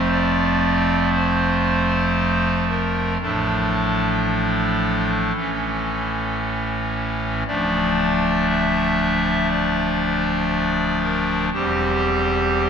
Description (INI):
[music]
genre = classical, chorale-style piece for pipe organ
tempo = 56-60 BPM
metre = 4/4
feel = rubato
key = D minor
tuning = A4 = 440 Hz
[part]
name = pipe organ, clarinet reed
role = solo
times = 0.0-12.7 s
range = D1 to E5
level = -18 LUFS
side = equal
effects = none
[sound]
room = wet church reverb, RT60 2.6 s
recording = none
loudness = -18 LUFS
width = side -7 dB against mid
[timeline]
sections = 0.0-12.7 A section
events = none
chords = 0.0 F; 3.2 Dm/A; 5.4 A; 7.5 Dm; 11.5 C/E